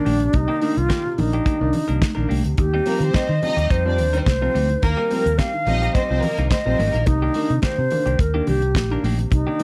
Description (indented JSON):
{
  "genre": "disco",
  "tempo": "107 BPM",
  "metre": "4/4",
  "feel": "straight",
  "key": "Eb major",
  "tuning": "A4 = 435 Hz",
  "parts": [
    { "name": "alto flute", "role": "melody", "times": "0.0-9.6 s", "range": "D4 to F5", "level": "-25 LUFS", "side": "equal", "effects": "none" },
    { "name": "clean electric guitar", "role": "accompaniment", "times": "0.0-9.6 s", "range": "Eb3 to Bb4", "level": "-33 LUFS", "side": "equal", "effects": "none" },
    { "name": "dark grand piano", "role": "accompaniment", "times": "0.0-9.6 s", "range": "C3 to D4", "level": "-30 LUFS", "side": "equal", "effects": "none" },
    { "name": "fingered electric bass", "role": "bass", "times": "0.1-9.4 s", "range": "Ab1 to Eb3", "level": "-24 LUFS", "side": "equal", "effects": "none" },
    { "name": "damped 70s drum kit", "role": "drums", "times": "0.1-9.6 s", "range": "hi-hat, kick drum, snare drum", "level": "-25 LUFS", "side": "equal", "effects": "none" },
    { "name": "congas", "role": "percussion", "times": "0.1-9.6 s", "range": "none", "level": "-33 LUFS", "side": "equal", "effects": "none" },
    { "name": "warm symphonic violin section", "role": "second line", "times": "2.9-7.0 s", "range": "Bb3 to Eb5", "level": "-30 LUFS", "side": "equal", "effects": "none" }
  ],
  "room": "small room reverb",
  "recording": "dark, warm production",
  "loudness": "-20 LUFS",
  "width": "mono",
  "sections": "0.0-9.6 A section",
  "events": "none",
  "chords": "0.0 Cm9; 2.6 Eb6; 7.1 Cm9",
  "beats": "| 0.34 0.90 1.46 2.02 | 2.59 3.15 3.71 4.27 | 4.83 5.39 5.95 6.51 | 7.07 7.63 8.19 8.75 | 9.31"
}